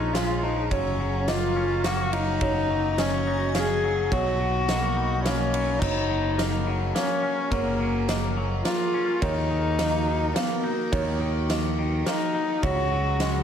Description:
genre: post-rock.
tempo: 106 BPM.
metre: 3/4.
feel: straight.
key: F# major.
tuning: A4 = 442 Hz.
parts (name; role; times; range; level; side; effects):
dark cello; melody; 0.0-13.4 s; A#3 to G#4; -27 LUFS; left 3 dB; slapback echo.
icy glass pad; sustained chords; 0.0-13.4 s; F#3 to C#6; -35 LUFS; right 2 dB; chorus, built-in reverb.
felt-muted upright piano; arpeggios; 0.0-13.4 s; C#5 to E#5; -33 LUFS; right 7 dB; slapback echo.
twangy electric guitar; arpeggios; 0.0-13.4 s; A#2 to D#4; -32 LUFS; left 3 dB; lush chorus, slapback echo.
modern bright picked electric bass; bass; 0.0-13.4 s; F#1 to D#2; -28 LUFS; equal; none.
huge arena drum kit; drums; 0.1-13.3 s; crash cymbal, kick drum, ride cymbal, snare drum; -30 LUFS; right 1 dB; none.
room: light reverb, studio reverb.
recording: none.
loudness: -22 LUFS.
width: side -8 dB against mid.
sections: 0.0-5.8 A section; 5.8-13.4 B section.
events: none.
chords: 0.0 A#m7; 0.7 F#maj7; 4.1 Bmaj7; 5.8 F#add9; 9.2 D#m; 12.6 C#sus4.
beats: 0.15 | 0.72 1.29 1.85 | 2.42 2.98 3.55 | 4.12 4.68 5.25 | 5.82 6.39 6.95 | 7.52 8.09 8.66 | 9.22 9.79 10.36 | 10.93 11.49 12.06 | 12.63 13.20.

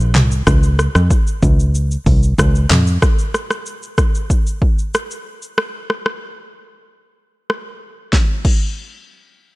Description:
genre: afrobeats.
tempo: 94 BPM.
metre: 4/4.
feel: straight.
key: unclear.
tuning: A4 = 445 Hz.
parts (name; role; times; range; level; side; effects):
fingered electric bass; bass; 0.0-3.0 s; Bb1 to F2; -14 LUFS; equal; none.
deep house drum kit; drums; 0.0-8.6 s; crash cymbal, handclaps, hi-hat, kick drum, rim click, shaker, snare drum, toms; -16 LUFS; equal; vintage 12-bit sampler grit.
room: little or no reverb.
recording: none.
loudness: -14 LUFS.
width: side -21 dB against mid.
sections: 0.0-3.0 A section; 3.0-8.1 B section; 8.1-9.6 C section.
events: none.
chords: none.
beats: | 0.47 1.11 1.75 2.38 | 3.02 3.66 4.30 4.94 | 5.58 6.21 6.85 7.49 | 8.13.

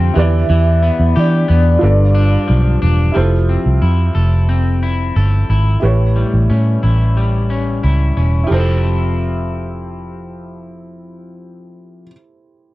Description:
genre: indie pop.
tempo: 90 BPM.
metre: 4/4.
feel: straight.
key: F lydian.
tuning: A4 = 441 Hz.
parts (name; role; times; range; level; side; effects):
soft octave-layered synth lead; melody; 0.0-2.8 s; D5 to G5; -20 LUFS; equal; tremolo, lush chorus, slapback echo.
dark upright piano; accompaniment; 0.0-12.7 s; E4 to F5; -24 LUFS; right 4 dB; none.
electric guitar at the edge of break-up; accompaniment; 0.0-12.2 s; G2 to A4; -21 LUFS; left 3 dB; wide subtle chorus, vibrato effect.
vintage muted fingered electric bass; bass; 0.0-12.1 s; E1 to E3; -13 LUFS; equal; none.
room: little or no reverb.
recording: dry, close 1970s-style studio recording.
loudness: -12 LUFS.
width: side -18 dB against mid.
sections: 0.0-3.2 A section; 3.2-8.5 B section; 8.5-11.2 C section.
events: none.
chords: 0.2 Em7; 1.8 G7; 3.2 Fmaj7; 5.8 A7; 8.5 Fmaj7.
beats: | 0.49 1.16 1.82 2.49 | 3.15 3.82 4.49 5.16 | 5.82 6.49 7.16 7.83 | 8.50 9.17 9.84 10.51.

